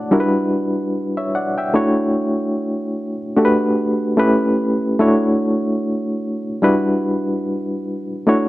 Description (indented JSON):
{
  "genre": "soul",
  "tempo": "74 BPM",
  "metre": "4/4",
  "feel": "swing 58% on 16ths",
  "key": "D major",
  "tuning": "A4 = 440 Hz",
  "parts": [
    { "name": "barky reed electric piano", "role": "solo", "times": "0.0-8.5 s", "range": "G3 to A5", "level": "-16 LUFS", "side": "equal", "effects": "overdrive, medium tremolo" }
  ],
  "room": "light reverb, digital ambience",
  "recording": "none",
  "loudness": "-16 LUFS",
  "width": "side -17 dB against mid",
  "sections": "0.0-8.5 A section",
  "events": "none",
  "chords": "0.1 Em9; 1.8 Dmaj9; 3.4 Gmaj7; 4.2 A9; 5.0 Dmaj9; 6.7 Em9",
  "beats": "| 0.12 0.93 1.75 2.57 | 3.38 4.20 5.02 5.83 | 6.65 7.47 8.29"
}